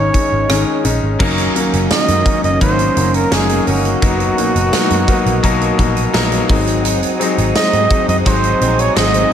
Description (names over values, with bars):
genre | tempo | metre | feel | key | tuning
1980s-style pop | 85 BPM | 4/4 | straight | unclear | A4 = 440 Hz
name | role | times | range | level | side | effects
warm flugelhorn | melody | 0.0-9.3 s | Gb4 to Eb5 | -18 LUFS | right 3 dB | digital delay
clear baby grand piano | accompaniment | 0.0-9.3 s | Cb3 to Eb4 | -17 LUFS | left 4 dB | none
string machine, cellos | sustained chords | 0.0-9.3 s | Db4 to F6 | -24 LUFS | right 1 dB | ensemble chorus
vintage muted picked electric bass | bass | 0.0-9.2 s | Gb1 to Ab2 | -18 LUFS | equal | none
big rock drum kit | drums | 0.1-9.3 s | crash cymbal, hi-hat, kick drum, rim click, snare drum | -18 LUFS | right 1 dB | gated reverb
direct-recorded clean electric guitar | riff | 1.2-9.3 s | Eb3 to Eb4 | -25 LUFS | right 7 dB | ensemble chorus, digital delay
room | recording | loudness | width
light reverb, studio reverb | none | -12 LUFS | side -9 dB against mid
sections
0.0-1.2 A section; 1.2-9.3 B section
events
none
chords
0.0 Absus4; 1.2 Gb6; 4.0 Cbmaj7/Gb; 6.5 Ab7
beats
0.49 | 1.20 1.91 2.61 3.32 | 4.02 4.73 5.44 6.14 | 6.85 7.55 8.26 8.96